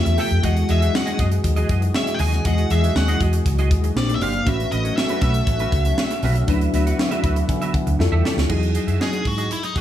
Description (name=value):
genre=polished 1980s jazz-funk pop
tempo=119 BPM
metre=4/4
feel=straight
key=E major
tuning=A4 = 441 Hz
part: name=nasal lead guitar with a parked wah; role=melody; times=0.0-9.8 s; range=D#4 to G#5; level=-26 LUFS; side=left 2 dB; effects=overdrive
part: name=mellow tine electric piano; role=accompaniment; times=0.0-9.8 s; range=F#3 to B5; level=-26 LUFS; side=left 1 dB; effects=medium stereo tremolo, lush chorus
part: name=lush unison pad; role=sustained chords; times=0.0-8.5 s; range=D3 to E5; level=-30 LUFS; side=right 1 dB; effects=chorus
part: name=vintage muted fingered electric bass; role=bass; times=0.0-9.8 s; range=G1 to D3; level=-20 LUFS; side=equal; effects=none
part: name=congas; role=percussion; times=0.0-9.8 s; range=none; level=-35 LUFS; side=left 3 dB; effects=none
part: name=semi-hollow electric guitar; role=riff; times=0.1-9.8 s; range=C#4 to F#5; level=-30 LUFS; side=right 4 dB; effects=ensemble chorus
part: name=crisp fusion drum kit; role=drums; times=0.1-9.8 s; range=crash cymbal, hi-hat, kick drum, snare drum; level=-24 LUFS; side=equal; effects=gated reverb
room=small room ambience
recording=none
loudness=-17 LUFS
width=side -11 dB against mid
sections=0.0-8.5 A section; 8.5-9.8 B section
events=tine electric piano fill 7.0-8.5; drum fill 8.0-8.5; lead electric guitar solo 8.5-9.8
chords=0.4 Emaj9; 4.0 A#69; 4.5 A69; 6.5 D69; 8.0 Fmaj9; 8.5 Emaj9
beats=| 0.44 0.94 1.45 1.95 | 2.45 2.96 3.46 3.96 | 4.47 4.97 5.47 5.98 | 6.48 6.99 7.49 8.00 | 8.50 9.00 9.51